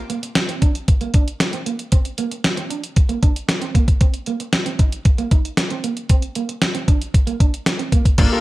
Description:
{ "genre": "early-eighties boogie funk", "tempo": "115 BPM", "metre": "4/4", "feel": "straight", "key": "unclear", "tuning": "A4 = 440 Hz", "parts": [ { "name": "electric guitar at the edge of break-up", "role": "riff", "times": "0.1-8.0 s", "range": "Bb3 to Eb4", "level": "-27 LUFS", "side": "right 6 dB", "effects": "lush chorus" }, { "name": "clean 12-bit digital drum machine", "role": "drums", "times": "0.1-8.3 s", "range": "crash cymbal, hi-hat, kick drum, snare drum", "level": "-16 LUFS", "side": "equal", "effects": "gated reverb" }, { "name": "chorused polysynth", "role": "accompaniment", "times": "8.2-8.4 s", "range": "Bb3 to A4", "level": "-22 LUFS", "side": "left 1 dB", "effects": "none" }, { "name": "string machine, full ensemble", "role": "sustained chords", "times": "8.2-8.4 s", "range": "G4 to D6", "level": "-40 LUFS", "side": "equal", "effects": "none" }, { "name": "slap-like FM bass", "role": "bass", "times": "8.2-8.3 s", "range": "G1", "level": "-18 LUFS", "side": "equal", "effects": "none" }, { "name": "warm horn section", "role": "second line", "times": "8.3-8.4 s", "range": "F4 to Bb4", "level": "-22 LUFS", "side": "left 2 dB", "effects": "none" } ], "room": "little or no reverb", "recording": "none", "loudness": "-16 LUFS", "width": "side -18 dB against mid", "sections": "0.0-8.2 A section", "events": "none", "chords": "0.0 Bbadd9; 4.0 Cm7; 5.8 Bbadd9", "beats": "0.36 0.88 1.40 | 1.92 2.44 2.97 3.49 | 4.01 4.53 5.05 5.57 | 6.10 6.62 7.14 7.66 | 8.18" }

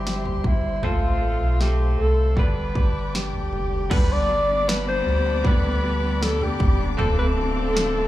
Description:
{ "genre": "pop ballad", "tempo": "78 BPM", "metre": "4/4", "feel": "straight", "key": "unclear", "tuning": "A4 = 437 Hz", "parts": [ { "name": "warm alto saxophone", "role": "melody", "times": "0.0-8.1 s", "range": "E4 to D5", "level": "-25 LUFS", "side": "equal", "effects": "plate reverb, slapback echo" }, { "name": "clear concert grand piano", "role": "accompaniment", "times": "0.0-8.1 s", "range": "D3 to G4", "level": "-30 LUFS", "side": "left 2 dB", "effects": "plate reverb, slapback echo" }, { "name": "warm studio string section", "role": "sustained chords", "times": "0.0-8.1 s", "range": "G4 to D6", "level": "-35 LUFS", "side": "left 1 dB", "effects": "plate reverb" }, { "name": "direct-recorded clean electric guitar", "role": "arpeggios", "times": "0.0-8.1 s", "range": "G2 to B4", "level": "-32 LUFS", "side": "right 1 dB", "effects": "wide subtle chorus, plate reverb, slapback echo, digital delay" }, { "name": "sub bass with octave", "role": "bass", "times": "0.0-8.1 s", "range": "D1 to D2", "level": "-24 LUFS", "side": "equal", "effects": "none" }, { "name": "house drum kit", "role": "drums", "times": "0.1-7.9 s", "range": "crash cymbal, kick drum, snare drum, toms", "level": "-23 LUFS", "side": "equal", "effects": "none" }, { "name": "dark chamber cello section", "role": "second line", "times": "3.9-8.1 s", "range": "B3 to C4", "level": "-31 LUFS", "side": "left 2 dB", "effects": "plate reverb, slapback echo" } ], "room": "light reverb", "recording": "live gig heard through the venue's PA, club reverb", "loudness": "-19 LUFS", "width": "side -14 dB against mid", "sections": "0.0-3.9 A section; 3.9-8.1 B section", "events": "none", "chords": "0.0 C/G; 0.8 F/A; 2.4 G; 7.0 Dm7", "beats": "0.06 | 0.83 1.60 2.37 3.14 | 3.91 4.68 5.45 6.21 | 6.99 7.75" }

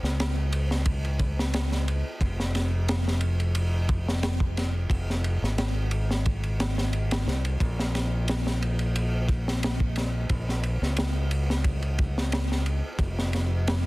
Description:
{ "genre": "trip hop", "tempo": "89 BPM", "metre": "4/4", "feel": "swing 53% on 16ths", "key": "Bb minor", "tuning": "A4 = 439 Hz", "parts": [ { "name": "modern bright fingered electric bass", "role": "bass", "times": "0.0-13.9 s", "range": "F1 to Db2", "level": "-26 LUFS", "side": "equal", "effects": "none" }, { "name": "crunchy breakbeat drum kit", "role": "drums", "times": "0.0-13.8 s", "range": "kick drum, ride cymbal, snare drum", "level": "-28 LUFS", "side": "equal", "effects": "none" } ], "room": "little or no reverb", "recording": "dense, heavily limited modern master", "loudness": "-24 LUFS", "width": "side -20 dB against mid", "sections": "0.0-13.9 A section", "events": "none", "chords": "none", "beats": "0.19 0.86 1.54 | 2.21 2.89 3.56 4.23 | 4.91 5.58 6.26 6.93 | 7.61 8.28 8.95 9.63 | 10.30 10.97 11.65 12.32 | 13.00 13.67" }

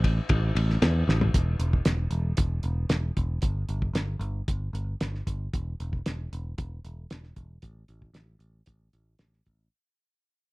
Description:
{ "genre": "classic rock", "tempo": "114 BPM", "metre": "4/4", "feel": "straight", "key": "unclear", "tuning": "A4 = 439 Hz", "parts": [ { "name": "picked electric bass", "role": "bass", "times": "0.0-9.7 s", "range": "E1 to E2", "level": "-28 LUFS", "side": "equal", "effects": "none" }, { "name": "cloth-damped thuddy drum kit", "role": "drums", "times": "0.0-9.6 s", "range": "hi-hat, kick drum, ride cymbal, snare drum, toms", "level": "-27 LUFS", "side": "equal", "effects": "none" } ], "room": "little or no reverb", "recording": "dry, close 1970s-style studio recording", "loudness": "-25 LUFS", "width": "side -22 dB against mid", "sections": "0.0-1.3 A section; 1.3-9.7 B section", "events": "drum fill 1.1; fade-out 1.3-9.7", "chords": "none", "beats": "0.30 0.82 | 1.34 1.86 2.39 2.91 | 3.43 3.96 4.48 5.00 | 5.53 6.05 6.58 7.10 | 7.63 8.15 8.68 9.21" }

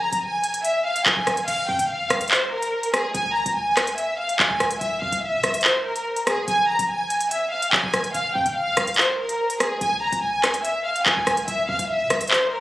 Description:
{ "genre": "hip hop, drill", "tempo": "144 BPM", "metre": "4/4", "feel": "half-time", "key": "F harmonic minor", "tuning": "A4 = 439 Hz", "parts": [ { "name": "warm symphonic violin section", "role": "melody", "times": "0.0-12.6 s", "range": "Ab4 to Bb5", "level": "-22 LUFS", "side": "equal", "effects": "digital delay" }, { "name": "short 808-style bass", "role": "bass", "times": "0.0-12.6 s", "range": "E1 to C3", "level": "-35 LUFS", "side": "equal", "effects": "none" }, { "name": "drill drum kit", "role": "drums", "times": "0.1-12.4 s", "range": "crash cymbal, handclaps, hi-hat, rim click", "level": "-21 LUFS", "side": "equal", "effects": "none" } ], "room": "moderate lush hall reverb, RT60 1.9 s, digital ambience", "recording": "recorded on a phone in the room, club reverb", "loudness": "-19 LUFS", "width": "side -16 dB against mid", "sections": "0.0-1.5 A section; 1.5-12.6 A section", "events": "none", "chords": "0.0 Fmadd11/Bb (rootless); 1.5 F5; 3.1 Db5; 4.8 C; 6.5 Fmadd11/Bb (rootless); 8.1 F5; 9.8 Db5; 11.5 C", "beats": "0.23 0.65 1.06 | 1.48 1.90 2.31 2.73 | 3.15 3.56 3.98 4.39 | 4.81 5.23 5.64 6.06 | 6.48 6.89 7.31 7.73 | 8.14 8.56 8.98 9.39 | 9.81 10.23 10.64 11.06 | 11.48 11.89 12.31" }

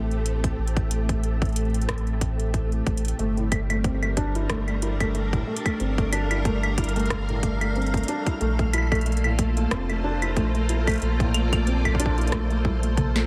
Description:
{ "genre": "IDM", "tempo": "92 BPM", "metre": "4/4", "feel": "swing 56% on 16ths", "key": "unclear", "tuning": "A4 = 440 Hz", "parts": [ { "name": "soft string machine", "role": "sustained chords", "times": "0.0-13.3 s", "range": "A2 to F5", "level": "-33 LUFS", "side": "equal", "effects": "ensemble chorus" }, { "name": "warm sub bass", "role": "bass", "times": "0.0-13.3 s", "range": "F1 to Bb1", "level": "-28 LUFS", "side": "equal", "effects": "none" }, { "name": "booming analog drum machine", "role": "drums", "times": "0.1-13.3 s", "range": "claves, hi-hat, rim click, snare drum, toms", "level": "-32 LUFS", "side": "equal", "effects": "overdrive, analog delay" }, { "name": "electronic kick drum", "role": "drums", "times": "0.4-13.1 s", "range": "none", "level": "-29 LUFS", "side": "equal", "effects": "none" }, { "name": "felt-muted upright piano", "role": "arpeggios", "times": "3.2-13.2 s", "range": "A2 to A4", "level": "-31 LUFS", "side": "equal", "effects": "analog delay" } ], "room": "light reverb, digital ambience", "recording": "echo-heavy mix", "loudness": "-24 LUFS", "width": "mono", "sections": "0.0-13.3 A section", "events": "drum fill 12.6-13.3", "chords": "0.0 Am7; 3.2 Gm7; 8.4 Bbmaj7", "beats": "| 0.58 1.24 1.89 2.54 | 3.19 3.84 4.50 5.15 | 5.80 6.45 7.10 7.76 | 8.41 9.06 9.71 10.37 | 11.02 11.67 12.32 12.97" }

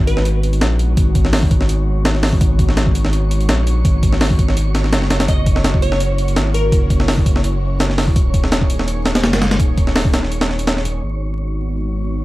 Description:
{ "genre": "drum and bass, jungle", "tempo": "167 BPM", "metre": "4/4", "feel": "swing 54% on 16ths", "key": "G# minor", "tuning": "A4 = 440 Hz", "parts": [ { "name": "glassy wavetable pluck", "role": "melody", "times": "0.0-0.3, 5.3-6.9 s", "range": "A#4 to D#5", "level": "-24 LUFS", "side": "equal", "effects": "chorus, dub echo" }, { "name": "airy breathy pad", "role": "sustained chords", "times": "0.0-12.2 s", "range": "G#3 to G#4", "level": "-27 LUFS", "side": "left 1 dB", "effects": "chorus" }, { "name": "saturated sub bass", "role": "bass", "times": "0.0-12.2 s", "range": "D#1 to A#1", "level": "-18 LUFS", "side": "equal", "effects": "tube saturation" }, { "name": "wind-like tuned noise texture", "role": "texture", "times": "0.4-12.2 s", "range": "C#5 to C#6", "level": "-31 LUFS", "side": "right 2 dB", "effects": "built-in reverb" }, { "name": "breakbeat sampler-style drum kit", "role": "drums", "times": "0.1-10.9 s", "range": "hi-hat, kick drum, snare drum", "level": "-15 LUFS", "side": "equal", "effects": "none" } ], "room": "little or no reverb", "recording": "dark, warm production, vinyl crackle", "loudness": "-14 LUFS", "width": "side -18 dB against mid", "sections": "0.0-11.0 A section; 11.0-12.2 B section", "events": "drop 0.0-11.0; break 10.3-11.0", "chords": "0.0 G#m7; 5.3 F#7; 8.2 D#7sus4; 11.0 G#m7", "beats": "0.25 0.61 | 0.97 1.33 1.69 2.05 | 2.41 2.77 3.13 3.49 | 3.85 4.21 4.57 4.92 | 5.28 5.64 6.00 6.36 | 6.72 7.08 7.44 7.80 | 8.16 8.52 8.88 9.24 | 9.60 9.96 10.31 10.67 | 11.03 11.39 11.75 12.11" }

